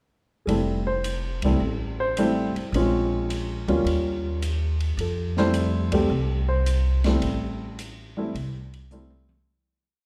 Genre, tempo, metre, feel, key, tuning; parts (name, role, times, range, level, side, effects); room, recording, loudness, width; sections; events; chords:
jazz piano trio; 107 BPM; 4/4; swing 68% on 8ths; F major; A4 = 439 Hz
dark grand piano; melody; 0.5-9.5 s; G3 to C5; -27 LUFS; equal
upright bass; bass; 0.5-9.4 s; F1 to F2; -28 LUFS; equal
open jazz drum kit; drums; 0.5-9.4 s; hi-hat, kick drum, ride cymbal, snare drum, toms; -38 LUFS; equal
moderate scoring stage reverb, RT60 1.9 s; recorded in a church or concert hall; -25 LUFS; mono
0.5-9.5 A section
band accent 1.3, 5.8; fade-out 7.2-9.5; drum fill 8.9-9.5
0.5 Fmaj9; 2.7 Bbm7; 3.9 Eb9; 5.0 Fmaj9